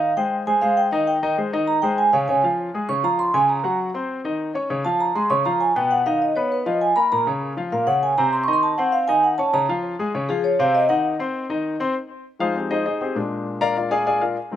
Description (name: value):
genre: jazz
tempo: 199 BPM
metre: 4/4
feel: straight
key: unclear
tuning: A4 = 439 Hz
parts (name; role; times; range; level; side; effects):
- vibraphone with soft mallets; melody; 0.0-11.0 s; Ab4 to Db6; -19 LUFS; right 2 dB; none
- warm concert grand piano; accompaniment; 0.0-14.6 s; Bb2 to Db6; -23 LUFS; left 2 dB; slapback echo
room: little or no reverb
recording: recorded outdoors, with no room sound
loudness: -18 LUFS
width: side -11 dB against mid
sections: 0.0-2.3 A section; 2.3-11.9 A section; 11.9-14.6 A section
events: vibraphone solo 0.0-11.9; grand piano solo 11.9-14.6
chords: 0.0 Fm9 (rootless); 2.3 Db; 3.5 Gb/Db; 4.1 Cm/Eb; 4.7 Db; 5.9 Badd9; 6.5 Abm69/F; 7.1 Bbmadd9; 8.3 F7b9b13/C (rootless); 9.5 Db; 10.7 Cm; 11.3 Cm/Eb; 11.9 Fm9; 13.2 Bb7